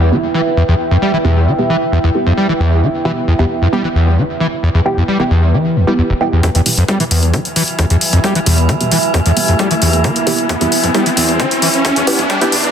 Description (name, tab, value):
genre	driving peak-time techno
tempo	133 BPM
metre	4/4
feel	straight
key	E minor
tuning	A4 = 440 Hz
part	screaming distorted acid line	riff	0.0-12.7 s	E1 to G3	-14 LUFS	equal	distortion, ensemble chorus, sidechain pumping, digital delay
part	deep dark ambient pad	texture	0.0-12.7 s	E4 to G5	-22 LUFS	right 1 dB	chorus, built-in reverb, sidechain pumping
part	filtered dub chord stab	stabs	0.1-12.5 s	B3 to G4	-19 LUFS	right 2 dB	phaser, lush chorus, cassette tape, sidechain pumping, digital delay
part	metallic inharmonic drone	drone	7.3-12.7 s	E3 to E4	-19 LUFS	right 2 dB	chorus, built-in reverb, sidechain pumping
part	electronic hi-hat	drums	6.4-12.7 s	none	-18 LUFS	left 1 dB	overdrive, sidechain pumping on hats
part	electronic kick drum	drums	6.4-12.4 s	none	-20 LUFS	left 1 dB	overdrive, high-pass filter on kick
part	riser	sound effects	7.7-12.7 s	none	-19 LUFS	equal	none
room	light reverb, digital ambience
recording	dense, heavily limited modern master, high-pass filter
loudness	-11 LUFS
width	side -8 dB against mid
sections	0.0-6.4 A section; 6.4-12.7 B section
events	filter sweep on synth stab 0.0-6.4, 6.4-12.7; build-up 6.4-12.7; filter sweep on acid bass 6.4-12.7; riser 7.7-12.7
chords	0.0 Em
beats	0.12 0.57 | 1.02 1.47 1.92 2.37 | 2.83 3.28 3.73 4.18 | 4.63 5.08 5.53 5.98 | 6.43 6.88 7.34 7.79 | 8.24 8.69 9.14 9.59 | 10.04 10.49 10.95 11.40 | 11.85 12.30